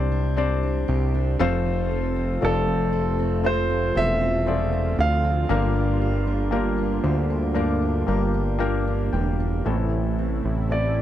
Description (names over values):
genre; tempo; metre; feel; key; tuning
pop ballad; 58 BPM; 4/4; straight; F major; A4 = 440 Hz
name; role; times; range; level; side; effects
clear concert grand piano; melody; 0.0-11.0 s; A4 to F5; -26 LUFS; right 1 dB; none
felt-muted upright piano; accompaniment; 0.0-11.0 s; G2 to G5; -27 LUFS; left 6 dB; none
fingerpicked steel-string acoustic guitar; arpeggios; 0.0-11.0 s; F2 to A4; -30 LUFS; right 12 dB; none
fat analog bass; bass; 0.0-11.0 s; E1 to D2; -24 LUFS; equal; none
warm analog pad; sustained chords; 1.4-11.0 s; C3 to F4; -31 LUFS; equal; chorus
room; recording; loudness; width
little or no reverb; dry, close 1970s-style studio recording; -20 LUFS; side -12 dB against mid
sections
0.0-9.7 A section; 9.7-11.0 B section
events
felt piano fill 6.5-9.7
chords
0.0 Csus2; 1.4 F; 5.5 Gm7; 9.7 Am